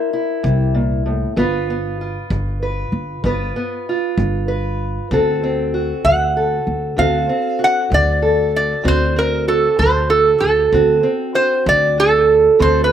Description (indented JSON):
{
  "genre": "acoustic country blues, solo or duo",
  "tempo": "64 BPM (dotted quarters)",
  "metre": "12/8",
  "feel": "straight",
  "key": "unclear",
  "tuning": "A4 = 440 Hz",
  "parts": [
    { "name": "metal-body resonator slide guitar", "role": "melody", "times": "0.0-0.4, 6.0-12.9 s", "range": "A4 to F#5", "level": "-14 LUFS", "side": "right 3 dB", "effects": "slapback echo" },
    { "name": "fingerpicked steel-string acoustic guitar", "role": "accompaniment", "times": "0.0-12.9 s", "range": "G2 to B4", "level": "-20 LUFS", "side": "equal", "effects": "slapback echo" },
    { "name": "upright bass", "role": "bass", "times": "0.4-12.9 s", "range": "G1 to D2", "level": "-21 LUFS", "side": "equal", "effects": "none" },
    { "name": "kick drum", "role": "drums", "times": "0.4-12.8 s", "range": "none", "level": "-29 LUFS", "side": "equal", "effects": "none" }
  ],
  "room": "little or no reverb",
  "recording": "none",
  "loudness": "-14 LUFS",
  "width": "side -9 dB against mid",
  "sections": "0.0-12.9 A section",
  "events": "none",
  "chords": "0.0 C7; 1.4 G7; 5.1 D7",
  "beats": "0.44 | 1.37 2.30 3.23 4.17 | 5.10 6.04 6.97 7.91 | 8.85 9.79 10.73 11.67 | 12.61"
}